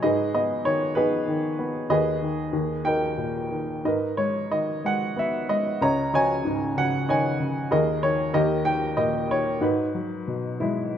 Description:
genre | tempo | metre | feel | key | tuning
classical, lyrical solo piano | 94 BPM | 3/4 | uneven beats, rubato | G# minor | A4 = 439 Hz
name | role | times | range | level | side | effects
warm upright piano | solo | 0.0-11.0 s | C#2 to A#5 | -22 LUFS | equal | none
room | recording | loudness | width
moderate recital hall reverb, RT60 1.8 s | none | -22 LUFS | side -9 dB against mid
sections
0.0-11.0 A section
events
none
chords
0.0 G#m; 1.9 G#m/D#; 2.5 D#; 3.8 G#madd9; 5.8 C#sus2; 7.7 D#sus4; 8.3 D#; 9.6 G#m7

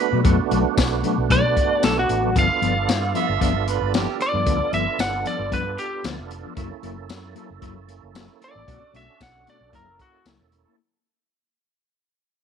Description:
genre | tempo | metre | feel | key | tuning
straight-eighth soul blues | 114 BPM | 4/4 | swing 53% on 16ths | B minor | A4 = 439 Hz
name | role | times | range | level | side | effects
overdriven harmonica | second line | 0.0-4.2 s | G4 to E5 | -26 LUFS | right 15 dB | none
percussive tonewheel organ | accompaniment | 0.0-10.8 s | A3 to A4 | -27 LUFS | right 17 dB | chorus vibrato, slow rotary speaker
mellow electric guitar | stabs | 0.0-10.8 s | G2 to A4 | -27 LUFS | left 11 dB | none
vintage muted fingered electric bass | bass | 0.1-10.6 s | E1 to B2 | -26 LUFS | equal | none
crunchy breakbeat drum kit | drums | 0.2-10.7 s | hi-hat, kick drum, snare drum, tambourine | -24 LUFS | left 2 dB | none
lightly driven lead guitar | melody | 1.3-10.3 s | F#4 to F#5 | -23 LUFS | equal | none
room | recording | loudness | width
small room ambience | 1960s-style stereo with parts hard left and right | -19 LUFS | side -7 dB against mid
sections
0.0-10.8 A section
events
fade-out 0.0-10.8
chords
0.0 Bm7; 2.4 G7; 6.6 F#7#9; 8.7 Bm7; 9.7 F#7#9

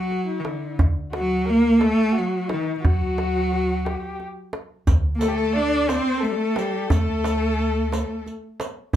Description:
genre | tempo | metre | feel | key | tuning
Persian modal ensemble | 59 BPM (dotted quarters) | 6/8 | straight | D dastgah homayun | A4 = 440 Hz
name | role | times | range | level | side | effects
clear cello | melody | 0.0-8.2 s | D3 to D4 | -22 LUFS | right 1 dB | none
rich kamancheh | second line | 0.0-8.3 s | Eb4+40c to D5 | -28 LUFS | left 4 dB | slapback echo
tombak | percussion | 0.1-9.0 s | none | -22 LUFS | right 1 dB | none
upright bass | bass | 0.8-8.0 s | D2 | -27 LUFS | equal | none
riq | percussion | 4.9-8.8 s | none | -35 LUFS | right 3 dB | none
clear chamber violin section | second line | 5.2-8.2 s | A4 to C5 | -30 LUFS | left 5 dB | none
room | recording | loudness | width
wet small room reverb, RT60 0.5 s | heard from further back in the room | -20 LUFS | side -11 dB against mid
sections
0.0-9.0 A section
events
none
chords
none

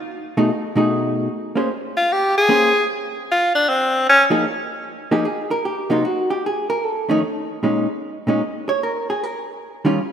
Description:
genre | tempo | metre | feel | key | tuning
jazz | 152 BPM | 4/4 | swing 64% on 8ths | F minor | A4 = 439 Hz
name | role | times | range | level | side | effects
vintage hollow-body jazz guitar | accompaniment | 0.4-10.0 s | F2 to Db5 | -20 LUFS | equal | none
edgy tenor saxophone | melody | 2.0-4.2 s | C4 to Ab4 | -16 LUFS | left 1 dB | none
room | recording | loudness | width
wet lush hall reverb, RT60 2.5 s | rough home demo mix | -17 LUFS | side -8 dB against mid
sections
0.0-4.5 A section; 4.5-10.1 A section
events
tenor saxophone solo 0.0-4.5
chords
0.0 B7; 1.3 Bbm9; 2.9 N.C.; 3.7 Fmadd11; 4.5 Fm7; 6.0 N.C.; 6.8 Faug7; 7.6 Bbm7; 9.2 Eb9

